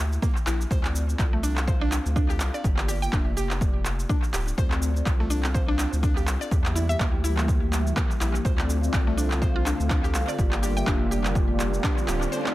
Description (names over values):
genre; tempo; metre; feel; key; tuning
afro house; 124 BPM; 4/4; swing 57% on 16ths; D minor; A4 = 440 Hz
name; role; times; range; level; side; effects
mellow synth brass; stabs; 0.0-12.5 s; Bb3 to G5; -33 LUFS; equal; chorus, sidechain pumping, tape echo
round analog bass; bass; 0.0-12.3 s; D1 to E2; -27 LUFS; equal; sidechain pumping
electronic shaker and handclaps; drums; 0.1-12.5 s; none; -31 LUFS; equal; overdrive, small room ambience, tape echo
mallet-like synth pluck; arpeggios; 0.2-12.4 s; A3 to G5; -32 LUFS; equal; chorus, sidechain pumping, tape echo
electronic kick drum; drums; 0.2-11.9 s; none; -25 LUFS; equal; overdrive, small room ambience
warm analog pad; sustained chords; 6.5-12.5 s; D3 to G4; -33 LUFS; equal; chorus, sidechain pumping
riser; sound effects; 11.4-12.5 s; none; -35 LUFS; left 1 dB; none
room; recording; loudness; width
little or no reverb; echo-heavy mix, faint mains hum; -22 LUFS; side -16 dB against mid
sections
0.0-12.5 A section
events
filter sweep on analog polysynth 0.0-12.5; riser 11.4-12.5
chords
0.0 Edim; 0.7 Dm7; 2.6 Gm7; 4.6 Dm7; 6.5 Edim; 8.4 Dm7; 10.4 Gm7